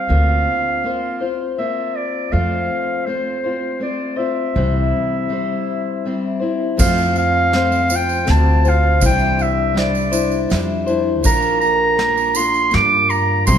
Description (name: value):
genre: acoustic folk duo or small band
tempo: 81 BPM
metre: 3/4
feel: straight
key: F major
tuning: A4 = 440 Hz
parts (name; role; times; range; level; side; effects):
- warm clarinet; melody; 0.0-13.6 s; C5 to D6; -18 LUFS; right 2 dB; none
- picked steel-string acoustic guitar; accompaniment; 0.0-13.6 s; Bb2 to C5; -21 LUFS; left 3 dB; none
- upright bass; bass; 0.1-13.6 s; Bb1 to G2; -19 LUFS; equal; none
- soft brush drum kit; drums; 6.8-13.6 s; crash cymbal, hi-hat, kick drum, snare drum; -22 LUFS; equal; none
- tambourine; percussion; 6.8-13.6 s; none; -29 LUFS; right 7 dB; none
room: moderate concert hall reverb, RT60 1.9 s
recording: none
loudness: -15 LUFS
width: side -8 dB against mid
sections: 0.0-6.8 A section; 6.8-13.6 B section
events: none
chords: 0.1 Bbadd9/D; 2.3 F; 4.6 C; 6.8 F; 9.0 Cadd9; 11.2 Bb